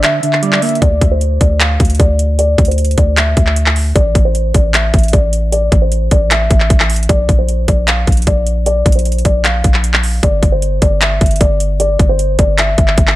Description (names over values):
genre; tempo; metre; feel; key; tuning
hip hop, trap; 153 BPM; 4/4; half-time; D minor; A4 = 440 Hz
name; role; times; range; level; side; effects
dark concert grand piano; melody; 0.0-13.2 s; C5 to F5; -18 LUFS; left 1 dB; low-pass filter
warm velvety synth lead; second line; 0.0-0.8 s; D5 to E5; -22 LUFS; left 3 dB; chorus, ping-pong delay
mellow electric guitar; accompaniment; 0.0-0.8 s; D3 to Bb3; -17 LUFS; right 6 dB; low-pass filter
long sustained 808-style bass; bass; 0.0-13.2 s; G1 to D2; -14 LUFS; equal; none
trap drum kit; drums; 0.0-13.2 s; handclaps, hi-hat, kick drum; -12 LUFS; equal; overdrive, vintage 12-bit sampler grit
room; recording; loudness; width
little or no reverb; none; -10 LUFS; side -16 dB against mid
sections
0.8-13.2 A section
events
break 0.0-0.8; filter sweep 0.8-13.2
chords
0.0 Gm; 0.8 Dsus2; 4.0 Asus4; 7.1 Bb; 10.2 G5